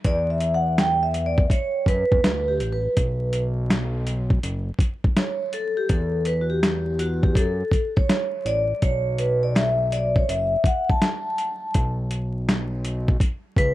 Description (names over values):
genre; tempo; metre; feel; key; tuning
hip hop, jazz-hop; 82 BPM; 4/4; swing 65% on 16ths; B minor; A4 = 439 Hz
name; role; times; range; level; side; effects
fat analog bass; bass; 0.0-13.7 s; F#1 to F#2; -25 LUFS; equal; none
dusty soul sampler-style drum kit; drums; 0.0-13.7 s; hi-hat, kick drum, snare drum; -22 LUFS; equal; overdrive
vibraphone with soft mallets; accompaniment; 0.1-12.0 s; F#4 to A5; -23 LUFS; equal; none
vibraphone with hard mallets; melody; 13.6-13.7 s; B4; -20 LUFS; left 1 dB; none
room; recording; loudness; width
light reverb; dark, warm production, vinyl crackle; -20 LUFS; side -15 dB against mid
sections
0.0-13.7 A section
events
vibraphone solo 0.0-13.7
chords
0.0 E9sus4; 3.0 B5; 5.9 Esus24; 8.8 Bsus2